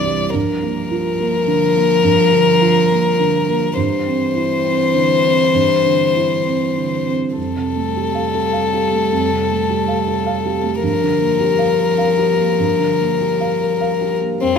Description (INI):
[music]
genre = neoclassical piano and strings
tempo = 97-106 BPM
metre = 3/4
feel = rubato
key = G dorian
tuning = A4 = 440 Hz
[part]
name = warm violin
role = melody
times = 0.0-14.6 s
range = C4 to D5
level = -16 LUFS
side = left 7 dB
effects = none
[part]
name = clear cello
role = second line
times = 0.0-14.6 s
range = E3 to G3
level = -22 LUFS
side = right 7 dB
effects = none
[part]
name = felt-muted upright piano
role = accompaniment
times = 0.0-14.6 s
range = C2 to F5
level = -20 LUFS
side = right 5 dB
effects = none
[sound]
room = light reverb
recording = minimal, uncompressed stereo recording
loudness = -14 LUFS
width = side -6 dB against mid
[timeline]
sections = 0.0-7.4 A section; 7.4-14.4 B section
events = none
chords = 0.3 Gm7; 3.8 Cadd9/G; 7.4 Fadd9; 10.8 Gm7